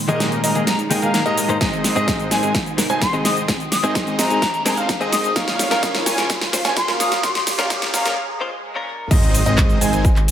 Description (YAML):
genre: EDM, festival progressive house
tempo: 128 BPM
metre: 4/4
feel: straight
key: Ab major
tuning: A4 = 440 Hz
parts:
  - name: lush unison pad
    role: sustained chords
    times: 0.0-10.3 s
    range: Bb2 to F4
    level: -29 LUFS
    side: equal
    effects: chorus, phaser, sidechain pumping
  - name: riser, swell and impact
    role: sound effects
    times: 0.0-10.3 s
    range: none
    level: -29 LUFS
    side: equal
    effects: none
  - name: direct-recorded clean electric guitar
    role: accompaniment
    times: 0.1-9.1 s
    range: Ab2 to C5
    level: -26 LUFS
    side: left 3 dB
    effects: analog chorus, sidechain pumping, dub echo
  - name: warm baby grand piano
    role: arpeggios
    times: 0.1-10.1 s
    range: Eb5 to Ab5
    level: -26 LUFS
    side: right 2 dB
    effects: sidechain pumping, low-pass filter, dub echo
  - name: dense compressed supersaw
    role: riff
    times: 0.1-10.1 s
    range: Ab3 to Ab5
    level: -25 LUFS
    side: right 1 dB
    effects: vintage 12-bit sampler grit, sidechain pumping, low-pass filter, dub echo
  - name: fat analog bass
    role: bass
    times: 0.1-10.0 s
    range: Eb1 to Eb2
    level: -28 LUFS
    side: equal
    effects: none
  - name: big-room dance drum kit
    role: drums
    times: 0.1-10.3 s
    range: crash cymbal, handclaps, hi-hat, shaker, snare drum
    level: -22 LUFS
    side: equal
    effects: none
  - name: concert flute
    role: melody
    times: 0.4-8.1 s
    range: Ab5 to Eb6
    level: -25 LUFS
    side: left 2 dB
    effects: dub echo
  - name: electronic kick drum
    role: drums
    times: 1.6-10.1 s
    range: none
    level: -20 LUFS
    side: equal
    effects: none
room: moderate digital room reverb, RT60 1.2 s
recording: high-pass filter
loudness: -16 LUFS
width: side -10 dB against mid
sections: 0.0-9.1 A section; 9.1-10.3 B section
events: build-up 0.0-9.1; drum fill 0.0-8.2; riser 0.0-8.2; filter sweep on supersaw synth 0.0-9.1; filter sweep on analog synth pad 0.0-9.1; break 8.2-9.1; swell 8.2-9.1; drop 9.1-10.3; impact 9.1-10.3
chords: 0.0 Ebsus4; 1.6 Ab; 5.4 Bbm; 9.1 Ab